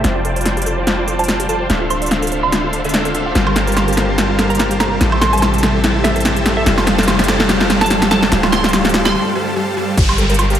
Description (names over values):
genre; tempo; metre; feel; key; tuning
future bass; 145 BPM; 4/4; swing 55% on 16ths, half-time; G dorian; A4 = 442 Hz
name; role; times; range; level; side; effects
glassy wavetable pluck; melody; 0.0-9.1 s; E5 to C6; -22 LUFS; right 2 dB; chorus, sidechain pumping, analog delay
shimmering ambient pad; sustained chords; 0.0-10.6 s; C3 to F4; -26 LUFS; left 2 dB; chorus, built-in reverb, sidechain pumping
soft round pluck; arpeggios; 0.0-10.5 s; E4 to A5; -25 LUFS; right 1 dB; chorus, sidechain pumping, analog delay
dense compressed supersaw; riff; 0.0-10.6 s; G3 to A5; -18 LUFS; equal; sidechain pumping, low-pass filter, analog delay
warm 808-style bass; bass; 0.0-10.6 s; D1 to A1; -21 LUFS; equal; sidechain pumping
big-room dance drum kit; drums; 0.0-10.6 s; crash cymbal, hi-hat, snare drum, woodblock; -17 LUFS; equal; overdrive
riser and downlifter; sound effects; 1.2-10.6 s; none; -25 LUFS; right 1 dB; none
electronic kick drum; drums; 10.0-10.1 s; none; -15 LUFS; equal; overdrive
room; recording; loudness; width
wet plate reverb, RT60 1.4 s; dreamy mix soaked in reverb; -13 LUFS; side -10 dB against mid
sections
0.0-10.0 A section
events
build-up 0.0-10.0; drum fill 0.0-9.1; filter sweep on synth pluck 0.0-10.0; filter sweep on synth arpeggio sound 0.0-10.0; break 9.1-10.0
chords
0.0 F69; 1.7 Dm7; 3.4 Gm11; 5.0 Am7; 6.7 F69; 8.3 Dm7; 10.0 Gm11